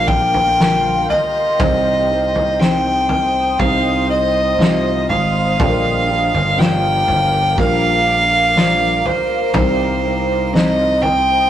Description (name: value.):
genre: pop ballad.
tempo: 60 BPM.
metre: 4/4.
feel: straight.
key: C minor.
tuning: A4 = 440 Hz.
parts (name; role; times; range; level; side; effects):
warm violin; melody; 0.0-11.5 s; C5 to G5; -16 LUFS; equal; none.
felt-muted upright piano; accompaniment; 0.0-11.5 s; Bb2 to C5; -23 LUFS; equal; none.
granular cloud pad; sustained chords; 0.0-11.5 s; Bb4 to Eb6; -24 LUFS; equal; built-in reverb.
picked steel-string acoustic guitar; arpeggios; 0.0-11.5 s; Bb2 to G4; -28 LUFS; right 3 dB; none.
fingered electric bass; bass; 0.0-11.5 s; G1 to C2; -22 LUFS; equal; none.
loose indie drum kit; drums; 0.1-11.3 s; kick drum, snare drum, toms; -19 LUFS; left 1 dB; none.
room: moderate studio reverb, RT60 0.5 s.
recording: rough rehearsal-room recording, warm saturation.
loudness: -13 LUFS.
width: side -11 dB against mid.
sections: 0.0-11.5 A section.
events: none.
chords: 0.0 Gm7; 1.6 Cm; 5.6 Gm7; 9.5 Cm.